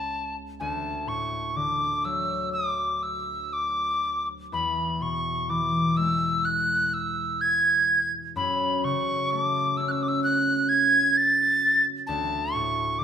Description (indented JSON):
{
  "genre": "celtic folk, Celtic slow air",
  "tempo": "63 BPM",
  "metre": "4/4",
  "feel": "uneven beats, rubato",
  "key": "unclear",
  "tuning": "A4 = 440 Hz",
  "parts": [
    { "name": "tin whistle", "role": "melody", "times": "0.0-13.0 s", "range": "A5 to A6", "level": "-23 LUFS", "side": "equal", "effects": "none" },
    { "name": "concert harp", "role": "accompaniment", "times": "0.0-13.0 s", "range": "C#2 to C#4", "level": "-30 LUFS", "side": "left 1 dB", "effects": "none" }
  ],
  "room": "moderate recital hall reverb, RT60 1.6 s",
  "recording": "minimal, uncompressed stereo recording",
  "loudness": "-22 LUFS",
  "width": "side -8 dB against mid",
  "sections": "0.0-13.0 A section",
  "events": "none",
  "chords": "0.0 A/C#; 0.6 D; 4.5 E; 8.4 F#m; 12.1 D5",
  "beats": "| 0.60 1.56 2.54 3.53 | 4.53 5.50 6.46 7.42 | 8.37 9.32 10.26 11.17 | 12.08 13.00"
}